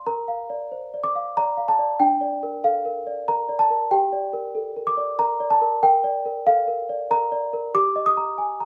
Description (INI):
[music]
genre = classical, lullaby for celesta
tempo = 94 BPM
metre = 3/4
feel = straight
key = unclear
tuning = A4 = 440 Hz
[part]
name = small celesta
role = solo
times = 0.0-8.7 s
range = D4 to Eb6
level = -22 LUFS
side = equal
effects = none
[sound]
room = moderate studio reverb, RT60 0.5 s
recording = lossy compression artefacts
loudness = -22 LUFS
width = mono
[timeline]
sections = 0.1-8.7 A section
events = none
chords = 0.1 Bb; 2.0 Bb/D; 3.9 Gm; 7.7 Eb/G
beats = | 0.06 0.71 1.35 | 2.00 2.64 3.28 | 3.92 4.56 5.20 | 5.84 6.47 7.11 | 7.74 8.38